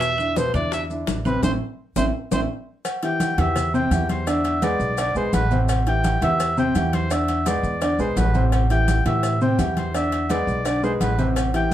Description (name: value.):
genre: latin, salsa.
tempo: 169 BPM.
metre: 4/4.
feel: straight.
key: unclear.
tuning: A4 = 439 Hz.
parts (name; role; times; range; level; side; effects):
mellow trumpet; melody; 0.0-2.4 s; B4 to E5; -25 LUFS; right 1 dB; none.
warm upright piano; accompaniment; 0.0-11.7 s; B2 to D5; -24 LUFS; equal; none.
upright bass; bass; 0.0-11.7 s; A1 to A2; -24 LUFS; equal; none.
bongos and cowbell; percussion; 0.0-11.7 s; none; -32 LUFS; left 4 dB; none.
congas; percussion; 0.0-11.7 s; none; -29 LUFS; left 1 dB; none.
maracas; percussion; 0.0-11.7 s; none; -39 LUFS; left 6 dB; none.
timbales and agogo bells; percussion; 0.0-11.5 s; none; -30 LUFS; right 2 dB; none.
warm oboe; melody; 3.0-11.7 s; B4 to G5; -26 LUFS; equal; none.
room: wet studio reverb, RT60 0.6 s.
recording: heard from further back in the room.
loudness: -19 LUFS.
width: side -12 dB against mid.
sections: 0.0-2.9 A section; 2.9-11.7 B section.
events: trumpet solo 0.0-2.9; band accent 1.4-2.9; drum fill 2.1-2.9.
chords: 0.0 E7sus4; 1.4 Am; 2.9 Em; 4.3 E7; 5.7 Am7; 7.1 E7; 8.5 Am7; 9.9 E7.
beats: | 0.01 0.36 0.72 1.07 | 1.43 1.78 2.14 2.50 | 2.85 3.21 3.56 3.92 | 4.27 4.62 4.98 5.33 | 5.69 6.04 6.40 6.75 | 7.11 7.46 7.82 8.17 | 8.52 8.88 9.23 9.59 | 9.94 10.30 10.65 11.01 | 11.36 11.72.